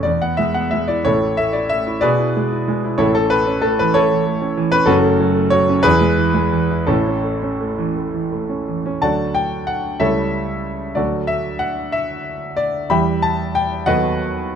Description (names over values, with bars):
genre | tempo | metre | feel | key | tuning
classical, romantic character piece for solo piano | 55-65 BPM (dotted quarters) | 6/8 | rubato | A major, D major from 9.0 s | A4 = 441 Hz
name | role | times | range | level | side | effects
clear concert grand piano | solo | 0.0-14.6 s | F#1 to B5 | -16 LUFS | equal | none
room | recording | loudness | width
moderate studio reverb, RT60 0.8 s | dark, warm production | -16 LUFS | side -8 dB against mid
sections
0.0-9.0 A section; 9.0-14.6 B section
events
none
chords
0.1 E; 1.1 A5; 2.0 E7/B; 3.0 A; 4.9 F#m; 5.9 E; 6.9 A; 9.0 D; 10.0 A7/C#; 11.0 D; 12.9 Em; 13.9 B7/D#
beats
0.06 | 1.06 2.04 | 3.01 3.97 | 4.90 5.86 | 6.89 7.97 | 9.03 10.02 | 10.98 11.95 | 12.91 13.87